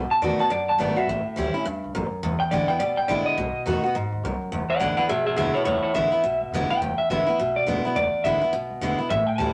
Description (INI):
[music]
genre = rockabilly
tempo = 210 BPM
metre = 4/4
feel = swing 60% on 8ths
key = E mixolydian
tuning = A4 = 440 Hz
[part]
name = picked steel-string acoustic guitar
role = accompaniment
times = 0.0-9.5 s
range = E2 to F#4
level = -29 LUFS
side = equal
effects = none
[part]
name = upright bass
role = bass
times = 0.0-9.5 s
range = E1 to F#2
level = -34 LUFS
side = equal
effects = none
[part]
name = electric guitar through a small old amp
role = melody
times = 0.1-9.5 s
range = E4 to A5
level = -25 LUFS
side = equal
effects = none
[sound]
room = moderate studio reverb, RT60 0.8 s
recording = none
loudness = -24 LUFS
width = mono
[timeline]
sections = 0.0-4.5 A section; 4.5-9.5 B section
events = clean electric guitar solo 0.0-4.5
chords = 0.0 B7; 1.1 A7; 2.2 E7; 3.4 B7; 4.5 E7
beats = 0.23 0.51 0.80 | 1.08 1.37 1.66 1.94 | 2.23 2.52 2.80 3.09 | 3.37 3.66 3.95 4.23 | 4.52 4.81 5.09 5.38 | 5.67 5.95 6.24 6.53 | 6.81 7.10 7.38 7.67 | 7.96 8.24 8.53 8.82 | 9.10 9.39